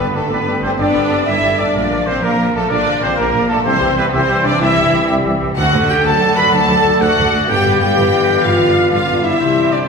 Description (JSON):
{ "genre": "cinematic, heroic adventure film score", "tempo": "125 BPM (dotted quarters)", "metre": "12/8", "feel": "straight", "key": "unclear", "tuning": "A4 = 443 Hz", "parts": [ { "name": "warm studio violin section", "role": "melody", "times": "0.0-9.9 s", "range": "A4 to B5", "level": "-24 LUFS", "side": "left 3 dB", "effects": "none" }, { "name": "clear oboe", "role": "second line", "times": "0.0-9.9 s", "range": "C5 to E5", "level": "-27 LUFS", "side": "equal", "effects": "none" }, { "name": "mellow hollow flute section", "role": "second line", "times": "0.0-9.9 s", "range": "E5 to G5", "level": "-26 LUFS", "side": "left 2 dB", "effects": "none" }, { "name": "rich studio violin section", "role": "second line", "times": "0.0-9.8 s", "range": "A4 to B5", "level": "-25 LUFS", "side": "left 2 dB", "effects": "none" }, { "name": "warm clarinet", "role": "second line", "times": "0.0-9.9 s", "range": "G4 to B4", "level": "-27 LUFS", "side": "left 1 dB", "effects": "none" }, { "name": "rich symphonic viola section", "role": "accompaniment", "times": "0.0-9.9 s", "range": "A3 to F5", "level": "-23 LUFS", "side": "right 2 dB", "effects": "none" }, { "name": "mellow French horn section", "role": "sustained chords", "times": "0.0-9.8 s", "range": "A3 to B4", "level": "-19 LUFS", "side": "left 3 dB", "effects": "none" }, { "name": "warm trombone section", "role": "sustained chords", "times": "0.0-9.9 s", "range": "C3 to B3", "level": "-25 LUFS", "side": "right 3 dB", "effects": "none" }, { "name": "concert harp", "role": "arpeggios", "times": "0.0-9.9 s", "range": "G2 to F5", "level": "-28 LUFS", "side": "left 5 dB", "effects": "none" }, { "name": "mellow trumpet", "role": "stabs", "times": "0.0-9.9 s", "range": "A4 to B5", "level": "-18 LUFS", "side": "right 2 dB", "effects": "none" }, { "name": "mellow tuba", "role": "bass", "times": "0.0-9.9 s", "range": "G1 to D2", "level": "-24 LUFS", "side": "right 3 dB", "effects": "none" }, { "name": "rich symphonic double bass section", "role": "bass", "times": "0.0-9.9 s", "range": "G1 to G2", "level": "-24 LUFS", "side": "right 1 dB", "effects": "none" }, { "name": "warm symphonic cello section", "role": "bass", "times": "0.0-9.9 s", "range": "D3 to B3", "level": "-23 LUFS", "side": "right 2 dB", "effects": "none" }, { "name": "timpani", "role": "percussion", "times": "5.6-6.0 s", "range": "D3", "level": "-28 LUFS", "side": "left 1 dB", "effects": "none" } ], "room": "wet recital hall reverb, RT60 1.5 s", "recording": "recorded in a church or concert hall", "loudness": "-12 LUFS", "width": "side -5 dB against mid", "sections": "0.0-9.9 A section", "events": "none", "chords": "0.0 Gadd9; 1.7 Bb; 3.7 C; 5.6 D; 7.5 G7" }